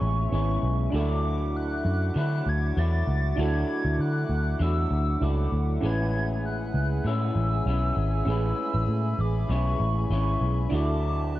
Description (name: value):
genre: indie pop, bedroom pop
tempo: 98 BPM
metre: 4/4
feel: swing 55% on 16ths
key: A major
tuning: A4 = 441 Hz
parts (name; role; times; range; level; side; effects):
- hollow clarinet-like synth lead; melody; 0.0-11.4 s; C#6 to A6; -34 LUFS; equal; analog chorus, tape echo
- electric guitar through a small old amp; accompaniment; 0.0-11.4 s; A2 to E4; -33 LUFS; left 5 dB; wide subtle chorus, warbly pitch drift
- soft electric-piano-like synth keys; accompaniment; 0.0-11.4 s; B3 to B4; -34 LUFS; right 4 dB; chorus, cassette tape
- hollow soft pad; sustained chords; 0.0-11.4 s; G#3 to D6; -38 LUFS; equal; chorus
- vintage muted picked electric bass; bass; 0.0-11.4 s; G#1 to D3; -25 LUFS; equal; none
room: little or no reverb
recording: dark, warm production, nothing above 11.0 kHz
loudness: -23 LUFS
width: side -15 dB against mid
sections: 0.0-11.4 A section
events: none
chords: 0.0 Amaj7; 0.9 Dadd9; 5.8 Amaj7; 10.7 Dadd9